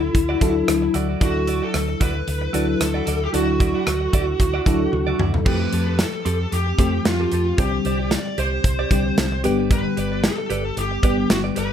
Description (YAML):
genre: 1980s-style pop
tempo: 113 BPM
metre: 4/4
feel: swing 55% on 16ths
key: unclear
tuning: A4 = 442 Hz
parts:
  - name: smooth overdriven lead guitar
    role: melody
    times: 0.0-11.7 s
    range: E4 to D5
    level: -25 LUFS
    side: left 1 dB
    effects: none
  - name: FM electric piano with soft pad layer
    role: accompaniment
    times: 0.0-11.7 s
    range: D3 to A4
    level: -24 LUFS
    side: left 2 dB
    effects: chorus, tremolo
  - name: direct-recorded clean electric guitar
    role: riff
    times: 0.0-11.7 s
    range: C4 to D5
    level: -30 LUFS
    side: right 6 dB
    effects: wide subtle chorus, digital delay
  - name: hollow-body short-scale fingered electric bass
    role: bass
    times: 0.0-11.7 s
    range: G1 to F2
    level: -25 LUFS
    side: equal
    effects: none
  - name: modern studio drum kit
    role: drums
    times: 0.1-11.7 s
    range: crash cymbal, hi-hat, kick drum, rim click, snare drum, toms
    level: -21 LUFS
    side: right 1 dB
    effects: none
room: moderate studio reverb, RT60 0.6 s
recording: none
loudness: -18 LUFS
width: side -9 dB against mid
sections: 0.0-5.5 A section; 5.5-11.7 B section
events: drum fill 4.9-5.5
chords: 0.0 Dadd9; 5.5 Fadd9; 7.6 Csus2; 9.4 G